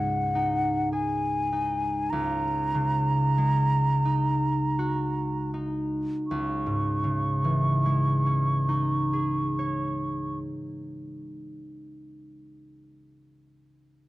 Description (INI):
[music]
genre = classical, impressionist duo for flute and harp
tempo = 38-52 BPM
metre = 3/4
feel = rubato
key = C# dorian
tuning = A4 = 436 Hz
[part]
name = mellow hollow silver concert flute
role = melody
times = 0.0-10.4 s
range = F#5 to C#6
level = -28 LUFS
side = right 1 dB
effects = none
[part]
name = concert harp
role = accompaniment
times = 0.0-12.3 s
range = C#2 to C#5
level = -26 LUFS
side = equal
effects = none
[sound]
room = light reverb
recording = dark, warm production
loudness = -24 LUFS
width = side -17 dB against mid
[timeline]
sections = 0.0-6.3 A section; 6.3-10.8 B section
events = slowing down 0.0-6.3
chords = 0.0 C#sus2; 2.1 F#69/C#; 6.3 C#madd9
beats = 0.92 | 2.11 3.36 4.75 | 6.29 7.82 9.32